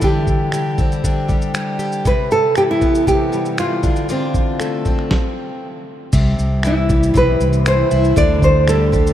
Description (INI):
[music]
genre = acoustic pop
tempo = 118 BPM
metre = 4/4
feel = straight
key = C major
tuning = A4 = 441 Hz
[part]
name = nylon-string guitar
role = melody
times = 0.0-9.1 s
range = C4 to D5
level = -18 LUFS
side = right 1 dB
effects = none
[part]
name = picked plugged-in twelve-string acoustic guitar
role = accompaniment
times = 0.0-9.1 s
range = C3 to G4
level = -20 LUFS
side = left 2 dB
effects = none
[part]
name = dusty soul sampler-style drum kit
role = drums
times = 0.0-9.1 s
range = crash cymbal, finger snaps, kick drum, shaker, snare drum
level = -20 LUFS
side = equal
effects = none
[part]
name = mellow fretless electric bass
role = bass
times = 6.1-9.1 s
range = B1 to D2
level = -17 LUFS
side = equal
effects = none
[sound]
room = moderate cathedral reverb, RT60 5.5 s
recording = in a vast, echoing space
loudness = -14 LUFS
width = side -11 dB against mid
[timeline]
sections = 0.0-6.1 A section; 6.1-9.1 B section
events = stop 5.1-6.1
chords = 0.0 Gsus4/D; 2.1 Cmaj7; 3.8 Dm7; 6.1 Cmaj7; 8.2 G5/D